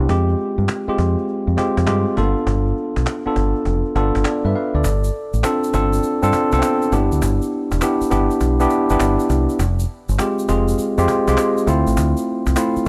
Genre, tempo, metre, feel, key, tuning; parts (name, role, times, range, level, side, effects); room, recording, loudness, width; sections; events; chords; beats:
R&B, new jack swing; 101 BPM; 4/4; swing 66% on 16ths; A4 = 440 Hz
tine electric piano; accompaniment; 0.0-12.9 s; Ab3 to F5; -21 LUFS; equal
deep dub fingered electric bass; bass; 0.0-12.9 s; E1 to G2; -21 LUFS; equal
cajon; drums; 0.1-12.9 s; -29 LUFS; equal; vintage 12-bit sampler grit
egg shaker; percussion; 4.8-12.9 s; -38 LUFS; equal
small room ambience; -19 LUFS; mono
0.0-4.8 A section; 4.8-12.9 B section
0.1 Fmadd9; 2.2 G7; 4.8 G9sus4; 6.9 Cmaj7 (rootless); 9.6 Fmadd9; 11.7 Dm7
| 0.09 0.69 1.28 1.87 | 2.47 3.06 3.66 4.25 | 4.84 5.44 6.03 6.63 | 7.22 7.82 8.41 9.00 | 9.60 10.19 10.79 11.38 | 11.97 12.57